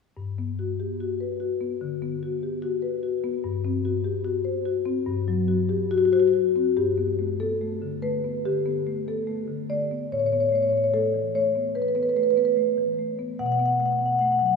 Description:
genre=classical, contemporary piece for solo marimba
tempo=73 BPM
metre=4/4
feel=rubato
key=G lydian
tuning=A4 = 440 Hz
part: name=marimba with medium mallets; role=solo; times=0.2-14.6 s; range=G2 to F#5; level=-22 LUFS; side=left 2 dB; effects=none
room=wet cathedral reverb, RT60 4.4 s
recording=recorded in a church or concert hall, small room ambience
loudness=-22 LUFS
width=side -5 dB against mid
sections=0.2-6.8 A section; 6.8-14.6 B section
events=none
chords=0.2 Gmaj7; 3.4 Gsus4; 6.8 Gadd9; 10.1 Aadd9; 13.4 B5

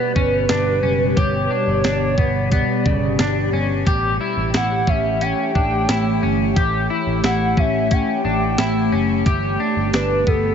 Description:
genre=dream pop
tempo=89 BPM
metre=4/4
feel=straight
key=A mixolydian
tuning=A4 = 440 Hz
part: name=warbly nostalgic lead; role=melody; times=0.0-10.5 s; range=A4 to G5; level=-23 LUFS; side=right 1 dB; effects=chorus, ping-pong delay
part: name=ethereal airy pad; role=sustained chords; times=0.0-10.5 s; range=B2 to C#5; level=-22 LUFS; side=left 1 dB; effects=ensemble chorus, built-in reverb
part: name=electric guitar at the edge of break-up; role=arpeggios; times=0.0-10.5 s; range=C#3 to G4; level=-23 LUFS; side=left 3 dB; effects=analog chorus, ping-pong delay
part: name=vintage muted picked electric bass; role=bass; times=0.2-10.5 s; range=F#1 to A1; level=-23 LUFS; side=equal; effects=none
part: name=clean 12-bit digital drum machine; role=drums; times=0.2-10.4 s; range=hi-hat, kick drum, snare drum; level=-20 LUFS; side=equal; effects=none
room=light reverb, digital ambience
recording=nothing above 7.6 kHz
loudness=-16 LUFS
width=side -7 dB against mid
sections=0.0-10.5 A section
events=none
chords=0.0 G; 3.9 A7; 9.3 Gadd9

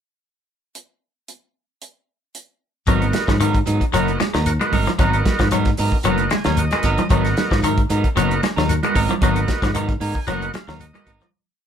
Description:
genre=afrobeat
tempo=114 BPM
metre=4/4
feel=swing 53% on 16ths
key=G# dorian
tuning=A4 = 435 Hz
part: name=damped 70s drum kit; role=drums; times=0.8-11.3 s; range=hi-hat, kick drum, snare drum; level=-22 LUFS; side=equal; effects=none
part: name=combo organ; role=accompaniment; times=2.9-11.3 s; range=B3 to G#5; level=-24 LUFS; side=right 3 dB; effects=none
part: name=semi-hollow electric guitar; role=arpeggios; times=2.9-11.3 s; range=D#3 to G#3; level=-23 LUFS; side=left 6 dB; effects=none
part: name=electric guitar at the edge of break-up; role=stabs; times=2.9-11.2 s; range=F#3 to A#4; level=-25 LUFS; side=right 4 dB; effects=none
part: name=fingered electric bass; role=bass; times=2.9-11.2 s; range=F#1 to G#2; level=-22 LUFS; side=equal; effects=none
part: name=shekere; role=percussion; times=2.9-11.3 s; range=none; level=-28 LUFS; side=left 2 dB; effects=none
part: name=claves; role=percussion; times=3.0-11.2 s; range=none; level=-35 LUFS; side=left 3 dB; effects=none
part: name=congas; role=percussion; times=3.0-11.3 s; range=none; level=-27 LUFS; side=right 4 dB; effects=none
room=moderate small room reverb, RT60 0.5 s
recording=band playing live in one room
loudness=-16 LUFS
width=side -8 dB against mid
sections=0.8-2.9 pickup bar; 2.9-11.3 groove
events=transistor combo organ fill 6.1-7.1, 9.8-11.3; fade-out 9.2-11.3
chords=0.8 N.C.; 2.9 G#m9

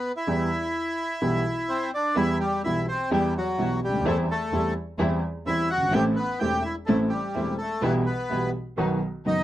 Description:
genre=tango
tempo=127 BPM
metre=4/4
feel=rubato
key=E minor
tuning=A4 = 443 Hz
part: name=bandoneon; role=melody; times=0.0-9.4 s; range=F#3 to G5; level=-26 LUFS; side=equal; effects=none
part: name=warm baby grand piano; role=accompaniment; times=0.3-9.4 s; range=E1 to A4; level=-26 LUFS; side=equal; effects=none
part: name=muted studio string section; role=stabs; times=2.1-9.4 s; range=E2 to E4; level=-31 LUFS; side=right 2 dB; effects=none
room=light reverb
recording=dry, close 1970s-style studio recording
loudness=-23 LUFS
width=side -13 dB against mid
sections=0.0-2.2 A section; 2.2-9.4 A section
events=none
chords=0.3 Em; 4.1 C/E; 5.9 Am; 7.8 Em/B; 8.8 B

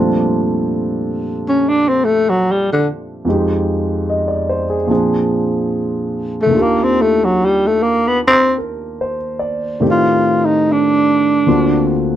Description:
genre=jazz ballad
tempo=73 BPM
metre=4/4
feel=swing 66% on 8ths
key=Bb major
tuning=A4 = 439 Hz
part: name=warm concert grand piano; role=accompaniment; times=0.0-12.2 s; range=D2 to Eb5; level=-17 LUFS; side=equal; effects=none
part: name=growling tenor saxophone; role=melody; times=1.5-12.1 s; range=D3 to F4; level=-13 LUFS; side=equal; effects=none
room=light reverb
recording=dark, warm production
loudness=-13 LUFS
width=side -11 dB against mid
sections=0.0-12.2 A section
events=tenor saxophone solo 0.0-12.2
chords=0.0 Bbmaj13; 3.3 Fm9; 4.9 Bb7; 6.5 Ebmaj9; 9.8 Am7b5; 11.5 D7alt

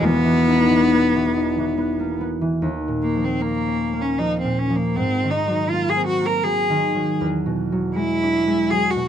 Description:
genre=classical, impressionist duo for cello and harp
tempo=65-83 BPM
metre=3/4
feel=rubato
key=unclear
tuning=A4 = 436 Hz
part: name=rich cello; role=melody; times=0.0-9.1 s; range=Bb3 to Bb4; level=-20 LUFS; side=left 1 dB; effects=none
part: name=concert harp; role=accompaniment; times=0.0-9.1 s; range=E1 to Eb4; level=-21 LUFS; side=equal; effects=none
room=light reverb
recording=close, detailed microphones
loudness=-18 LUFS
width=side -9 dB against mid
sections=0.0-2.6 A section; 2.6-9.1 B section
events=none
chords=0.0 E5; 2.6 Ebsus2; 5.0 Ab9; 7.2 E9

